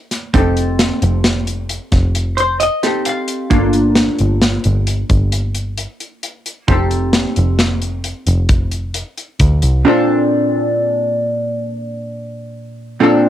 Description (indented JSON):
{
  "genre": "progressive instrumental, band music in an uneven meter",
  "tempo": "132 BPM",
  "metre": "7/4",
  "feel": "straight",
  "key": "unclear",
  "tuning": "A4 = 440 Hz",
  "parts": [
    { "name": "vintage hollow-body jazz guitar", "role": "accompaniment", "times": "0.0-13.3 s", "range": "Bb2 to F5", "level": "-16 LUFS", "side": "equal", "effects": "double-tracked left and right, cassette tape" },
    { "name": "modern studio drum kit", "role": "drums", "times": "0.1-9.7 s", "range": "hi-hat, kick drum, snare drum", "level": "-17 LUFS", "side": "equal", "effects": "cassette tape" },
    { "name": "overdriven picked electric bass", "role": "bass", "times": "0.3-9.8 s", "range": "F1 to D2", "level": "-16 LUFS", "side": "equal", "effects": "none" }
  ],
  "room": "light reverb",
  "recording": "home recording on cassette",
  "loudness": "-13 LUFS",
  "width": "side -11 dB against mid",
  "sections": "0.0-9.9 A section; 9.9-13.3 B section",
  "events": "hollow-body jazz guitar fill 2.1-3.5",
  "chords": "0.3 F7; 3.5 Gm7; 6.7 F7; 9.9 Bbmaj7",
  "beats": "| 0.34 0.79 1.24 1.70 2.15 2.60 3.06 | 3.51 3.96 4.42 4.87 5.32 5.78 6.23 | 6.68 7.14 7.59 8.04 8.49 8.95 9.40 | 9.85 10.30 10.75 11.21 11.66 12.11 12.56 | 13.01"
}